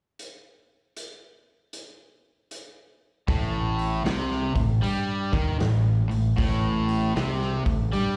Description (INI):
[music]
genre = blues rock power trio and southern rock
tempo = 78 BPM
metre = 4/4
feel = swing 65% on 8ths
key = A minor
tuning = A4 = 440 Hz
[part]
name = raw garage drum kit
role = drums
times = 0.2-8.2 s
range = hi-hat, kick drum, snare drum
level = -32 LUFS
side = equal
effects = none
[part]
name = cranked stack guitar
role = riff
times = 3.3-8.2 s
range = A2 to G3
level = -28 LUFS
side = equal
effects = overdrive
[part]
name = growling fingered electric bass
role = bass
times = 3.3-8.2 s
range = A1 to G2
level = -30 LUFS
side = equal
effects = overdrive
[sound]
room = little or no reverb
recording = live gig heard through the venue's PA, club reverb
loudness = -25 LUFS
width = mono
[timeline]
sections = 0.2-3.3 A section; 3.3-8.2 B section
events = none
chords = 0.2 N.C.; 3.3 Am